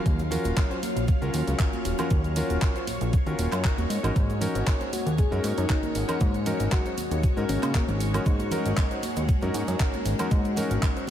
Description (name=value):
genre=nu-disco, nu disco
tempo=117 BPM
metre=4/4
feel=swing 53% on 16ths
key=unclear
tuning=A4 = 440 Hz
part: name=string machine, full ensemble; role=sustained chords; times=0.0-11.1 s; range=Gb3 to F5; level=-32 LUFS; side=left 1 dB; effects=ensemble chorus, sidechain pumping
part: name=fat analog bass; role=bass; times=0.1-10.8 s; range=Eb1 to Db3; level=-27 LUFS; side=equal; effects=none
part: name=electronic kick drum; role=drums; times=0.1-10.9 s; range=none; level=-24 LUFS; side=equal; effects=none
part: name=house drum kit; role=drums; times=0.1-11.1 s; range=handclaps, hi-hat, shaker, woodblock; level=-34 LUFS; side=right 1 dB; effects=none
part: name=cabasa and congas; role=percussion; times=0.1-11.1 s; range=none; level=-36 LUFS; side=right 4 dB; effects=none
part: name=warm electric grand piano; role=accompaniment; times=0.3-11.0 s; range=Db4 to C5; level=-31 LUFS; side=left 1 dB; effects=sidechain pumping, tape echo
part: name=soft octave-layered synth lead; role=melody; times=4.9-7.8 s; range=Bb3 to Ab4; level=-35 LUFS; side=left 4 dB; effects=chorus, cassette tape, ping-pong delay
room=light reverb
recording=none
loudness=-23 LUFS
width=side -10 dB against mid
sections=0.0-11.1 A section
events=none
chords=0.0 Ebm9; 3.9 Ab7sus4